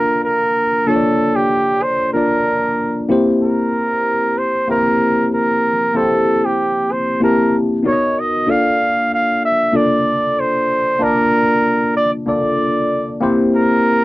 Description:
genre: soul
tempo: 95 BPM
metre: 4/4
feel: straight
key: unclear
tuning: A4 = 440 Hz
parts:
  - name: clear flugelhorn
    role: melody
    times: 0.0-14.0 s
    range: G4 to F5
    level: -16 LUFS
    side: right 1 dB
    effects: none
  - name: tine electric piano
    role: accompaniment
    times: 0.0-14.0 s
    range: Bb3 to A5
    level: -17 LUFS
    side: left 1 dB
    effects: phaser
room: light reverb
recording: dry, close 1970s-style studio recording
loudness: -14 LUFS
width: side -18 dB against mid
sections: 0.0-14.0 A section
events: none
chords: 0.0 Bbmaj7; 3.1 C7; 7.8 Bmaj7; 8.5 Bbmaj7; 13.2 C7

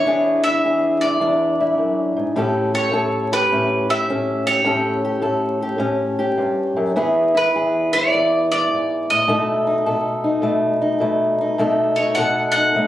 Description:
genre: acoustic country blues, solo or duo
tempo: 104 BPM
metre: 4/4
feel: swing 67% on 8ths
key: unclear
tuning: A4 = 438 Hz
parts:
  - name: bowl-back mandolin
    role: melody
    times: 0.0-12.9 s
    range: B4 to F#5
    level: -21 LUFS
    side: right 1 dB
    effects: none
  - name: fingerpicked old ladder-braced acoustic guitar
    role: accompaniment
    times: 0.0-12.9 s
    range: E2 to A4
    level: -18 LUFS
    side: left 1 dB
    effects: none
room: moderate booth ambience, RT60 0.3 s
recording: recorded on a phone in the room, club reverb, vinyl crackle, compression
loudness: -16 LUFS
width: side -13 dB against mid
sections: 0.0-12.9 A section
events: none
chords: 0.0 E7; 2.4 A7; 7.0 E7; 9.3 B7

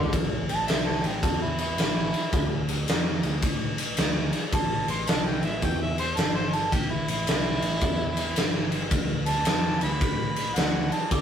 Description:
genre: blues rock power trio and southern rock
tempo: 109 BPM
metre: 4/4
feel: swing 65% on 8ths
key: unclear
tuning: A4 = 439 Hz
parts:
  - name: clear harmonica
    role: melody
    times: 0.0-11.2 s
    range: E4 to D6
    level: -30 LUFS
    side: right 2 dB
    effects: overdrive
  - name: vintage muted picked electric bass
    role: bass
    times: 0.0-11.2 s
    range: G1 to A2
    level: -32 LUFS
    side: equal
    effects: none
  - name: big rock drum kit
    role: drums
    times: 0.0-11.2 s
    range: kick drum, ride cymbal, snare drum, toms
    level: -25 LUFS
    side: equal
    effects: none
room: light reverb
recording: rough rehearsal-room recording, warm saturation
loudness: -23 LUFS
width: side -8 dB against mid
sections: 0.1-11.2 A section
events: harmonica solo 0.1-11.2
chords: 0.1 A5; 2.3 D5; 4.5 A5; 8.9 D5

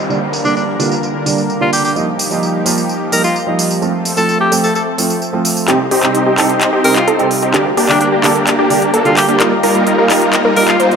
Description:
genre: EDM, festival progressive house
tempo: 129 BPM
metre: 4/4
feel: straight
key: G minor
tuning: A4 = 440 Hz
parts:
  - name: dark baby grand piano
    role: accompaniment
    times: 0.0-11.0 s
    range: C3 to A4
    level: -17 LUFS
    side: right 4 dB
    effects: dub echo
  - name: lush unison pad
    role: sustained chords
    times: 0.0-11.0 s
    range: D3 to C6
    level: -20 LUFS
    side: left 1 dB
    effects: chorus
  - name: downlifter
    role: sound effects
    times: 0.0-2.0 s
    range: none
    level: -27 LUFS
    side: equal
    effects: none
  - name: big-room dance drum kit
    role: drums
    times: 0.1-11.0 s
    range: handclaps, hi-hat, tambourine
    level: -18 LUFS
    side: equal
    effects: low-pass filter on hats, low-pass filter on perc, low-pass filter on cymbals, low-pass filter on snare
  - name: clear alto saxophone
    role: melody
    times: 0.4-10.8 s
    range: D4 to Bb4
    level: -18 LUFS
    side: left 1 dB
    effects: dub echo
  - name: wide unison pluck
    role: arpeggios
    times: 5.7-11.0 s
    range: G4 to C5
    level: -18 LUFS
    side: left 2 dB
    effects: dub echo
  - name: supersaw chords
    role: riff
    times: 5.7-11.0 s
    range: G3 to C5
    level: -14 LUFS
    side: equal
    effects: low-pass filter, dub echo
  - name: wide detuned saw bass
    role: bass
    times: 5.7-11.0 s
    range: C2 to Eb2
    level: -25 LUFS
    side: left 1 dB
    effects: none
room: moderate scoring stage reverb, RT60 2.1 s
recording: none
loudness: -11 LUFS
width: side -6 dB against mid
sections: 0.0-5.7 A section; 5.7-11.0 B section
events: build-up 5.7-11.0; drum fill 5.7-11.0; filter sweep on supersaw synth 5.7-11.0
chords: 0.1 Gm/D; 2.0 Ebadd9; 3.8 F; 5.7 Cm; 7.5 Gm/D; 9.4 Ebadd9

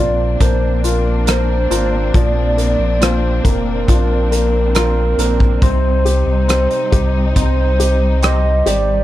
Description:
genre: pop ballad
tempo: 69 BPM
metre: 4/4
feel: straight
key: unclear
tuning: A4 = 440 Hz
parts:
  - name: hollow clarinet-like synth lead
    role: melody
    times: 0.0-9.0 s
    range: Bb4 to Eb5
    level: -20 LUFS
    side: right 2 dB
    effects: chorus, slapback echo
  - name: clear concert grand piano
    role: accompaniment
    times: 0.0-9.0 s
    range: F3 to G4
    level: -22 LUFS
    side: left 7 dB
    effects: none
  - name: warm studio string section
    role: sustained chords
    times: 0.0-9.0 s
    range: G3 to Eb4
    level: -24 LUFS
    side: left 3 dB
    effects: none
  - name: direct-recorded clean electric guitar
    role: arpeggios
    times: 0.0-9.0 s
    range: Bb2 to Bb4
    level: -25 LUFS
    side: right 12 dB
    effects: none
  - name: warm sub bass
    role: bass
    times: 0.0-9.0 s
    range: F1 to C2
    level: -16 LUFS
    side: equal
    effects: none
  - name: modern studio drum kit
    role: drums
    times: 0.4-8.9 s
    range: hi-hat, kick drum, rim click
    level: -17 LUFS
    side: equal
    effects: none
room: little or no reverb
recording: none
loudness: -12 LUFS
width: side -14 dB against mid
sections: 0.0-9.0 A section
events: none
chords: 0.0 Bbadd9; 5.6 Cm

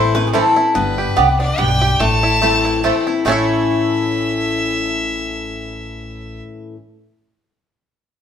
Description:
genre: bluegrass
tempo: 144 BPM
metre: 3/4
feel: swing 55% on 8ths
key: unclear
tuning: A4 = 440 Hz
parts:
  - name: bluegrass banjo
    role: melody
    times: 0.0-6.5 s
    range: E3 to A4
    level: -23 LUFS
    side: right 3 dB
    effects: none
  - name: clear fiddle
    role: melody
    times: 0.0-6.4 s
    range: A4 to A5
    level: -21 LUFS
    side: left 2 dB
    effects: none
  - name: lap resonator guitar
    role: second line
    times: 0.0-0.7 s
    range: G#4 to C5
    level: -17 LUFS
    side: left 2 dB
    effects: none
  - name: picked steel-string acoustic guitar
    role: accompaniment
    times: 0.0-6.8 s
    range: F2 to E4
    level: -21 LUFS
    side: left 4 dB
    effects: none
  - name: mandolin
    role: stabs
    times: 0.0-6.8 s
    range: A3 to A5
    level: -20 LUFS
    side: right 4 dB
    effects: none
  - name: upright bass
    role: bass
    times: 0.0-6.4 s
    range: G1 to C2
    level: -23 LUFS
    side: equal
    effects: none
room: wet stone room reverb, RT60 1.0 s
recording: band playing live in one room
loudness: -14 LUFS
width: side -8 dB against mid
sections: 0.8-3.2 A section; 3.2-5.8 B section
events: none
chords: 0.0 Am; 0.8 G; 2.0 Am; 3.2 A

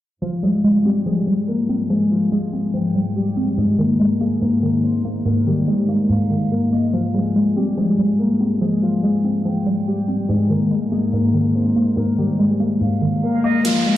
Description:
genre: hip hop, drill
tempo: 143 BPM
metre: 4/4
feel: half-time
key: F minor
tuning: A4 = 440 Hz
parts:
  - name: Celtic harp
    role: melody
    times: 0.2-14.0 s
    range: F3 to C5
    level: -18 LUFS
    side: left 2 dB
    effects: low-pass filter
  - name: hollow square pluck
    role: accompaniment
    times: 0.2-13.7 s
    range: Ab2 to C4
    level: -21 LUFS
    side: right 1 dB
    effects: chorus
  - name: warm chamber string section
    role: sustained chords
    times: 0.2-13.6 s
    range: Ab2 to Bb3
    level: -26 LUFS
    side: right 2 dB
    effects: none
  - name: silver concert flute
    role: second line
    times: 2.7-3.5, 6.1-6.9, 9.5-10.3, 12.8-13.6 s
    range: Eb5 to G5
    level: -32 LUFS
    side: right 8 dB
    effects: digital delay
  - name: electronic hi-hat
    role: drums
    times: 13.6-13.7 s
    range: none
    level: -25 LUFS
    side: right 2 dB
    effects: none
  - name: downlifter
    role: sound effects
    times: 13.6-14.0 s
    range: none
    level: -22 LUFS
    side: right 2 dB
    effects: none
room: light reverb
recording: played on a big sound system in a bare room, large studio reverb, low-pass filter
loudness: -16 LUFS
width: side -14 dB against mid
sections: 0.2-13.6 A section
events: filter sweep 0.2-13.6; kick muted 13.6-14.0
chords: 0.2 Fmadd9; 3.6 Absus2; 6.9 Fmadd9; 10.3 Absus2

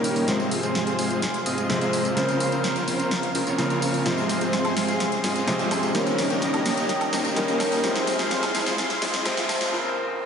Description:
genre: EDM, festival progressive house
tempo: 127 BPM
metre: 4/4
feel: straight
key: F minor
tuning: A4 = 440 Hz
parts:
  - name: clear concert grand piano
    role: accompaniment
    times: 0.0-10.3 s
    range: C3 to C5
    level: -26 LUFS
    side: equal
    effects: analog delay
  - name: lush unison pad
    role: sustained chords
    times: 0.0-9.7 s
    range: Db4 to C6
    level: -30 LUFS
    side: equal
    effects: chorus
  - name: dense compressed supersaw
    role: riff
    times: 0.0-9.7 s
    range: Ab3 to Eb5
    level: -27 LUFS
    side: equal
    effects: cassette tape, low-pass filter, analog delay
  - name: wide detuned saw bass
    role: bass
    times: 0.0-9.7 s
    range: Eb1 to F2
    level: -37 LUFS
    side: equal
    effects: none
  - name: house drum kit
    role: drums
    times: 0.0-9.7 s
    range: hi-hat, snare drum, tambourine, woodblock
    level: -28 LUFS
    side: equal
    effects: small room ambience
  - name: riser and noise sweep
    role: sound effects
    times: 1.4-10.3 s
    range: none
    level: -36 LUFS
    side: right 1 dB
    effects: none
room: wet lush hall reverb, RT60 1.9 s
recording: dreamy mix soaked in reverb, high-pass filter, nothing above 10.9 kHz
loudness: -21 LUFS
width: side -6 dB against mid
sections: 0.0-10.3 A section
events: build-up 0.0-10.3; drum fill 0.0-9.7; filter sweep on supersaw synth 0.0-10.3; filter sweep on analog synth pad 0.0-10.3; filter sweep 0.0-10.3; break 9.7-10.3; noise sweep 9.7-10.3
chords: 0.3 Fm; 2.2 Bbmadd9; 4.1 Fm; 5.9 Eb7; 7.8 Fm; 9.7 Bbmadd9

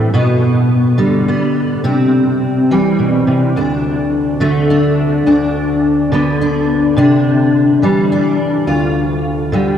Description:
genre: folk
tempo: 105 BPM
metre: 3/4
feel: straight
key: unclear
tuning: A4 = 438 Hz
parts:
  - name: fingerpicked steel-string acoustic guitar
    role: solo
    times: 0.0-9.8 s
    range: D2 to F4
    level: -11 LUFS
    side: equal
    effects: ensemble chorus
room: wet cathedral reverb, RT60 5.1 s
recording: dreamy mix soaked in reverb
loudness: -11 LUFS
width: side -9 dB against mid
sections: 0.0-9.8 A section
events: none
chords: 0.1 G/B; 1.8 C; 3.5 D5; 5.2 Bm/D; 7.0 Cadd9; 8.7 Dm

